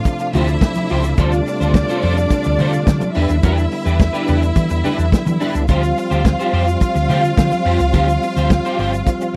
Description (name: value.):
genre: disco.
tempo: 106 BPM.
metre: 4/4.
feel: straight.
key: D dorian.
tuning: A4 = 441 Hz.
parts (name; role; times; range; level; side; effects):
clear studio string section; second line; 0.0-9.4 s; D4 to F5; -24 LUFS; equal; none.
tonewheel organ; sustained chords; 0.0-9.4 s; C3 to F4; -26 LUFS; equal; chorus vibrato, fast rotary speaker.
electric guitar at the edge of break-up; accompaniment; 0.1-9.3 s; D4 to C5; -24 LUFS; equal; ensemble chorus.
warm soul drum kit; drums; 0.1-9.3 s; hi-hat, kick drum, snare drum; -17 LUFS; equal; none.
egg shaker; percussion; 0.1-9.3 s; none; -45 LUFS; equal; none.
hollow-body short-scale fingered electric bass; bass; 0.3-9.0 s; G1 to E3; -20 LUFS; equal; none.
congas; percussion; 0.3-8.6 s; none; -29 LUFS; equal; none.
room: little or no reverb.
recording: none.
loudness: -17 LUFS.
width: mono.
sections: 0.0-9.4 A section.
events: none.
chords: 0.0 Dm11; 1.2 G9sus4/D; 3.2 Em7; 5.7 Dm7.